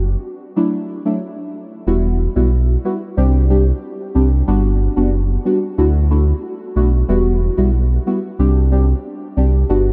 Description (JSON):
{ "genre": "dancehall", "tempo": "92 BPM", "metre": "4/4", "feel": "straight", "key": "E minor", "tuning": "A4 = 440 Hz", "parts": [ { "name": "sub bass with octave", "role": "bass", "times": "0.0-9.9 s", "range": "E1 to D2", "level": "-17 LUFS", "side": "equal", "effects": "none" }, { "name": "deep mellow chord stab", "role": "accompaniment", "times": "0.6-9.9 s", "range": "F#3 to G4", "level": "-21 LUFS", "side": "equal", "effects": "chorus, phaser" } ], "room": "light reverb", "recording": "none", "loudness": "-17 LUFS", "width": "mono", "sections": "0.0-1.9 A section; 1.9-9.9 B section", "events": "none", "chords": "0.0 N.C.; 0.6 Dadd9; 1.9 Emadd9; 3.2 Csus2; 4.5 Gmaj7; 5.8 Dadd9; 7.1 Emadd9; 8.4 Csus2" }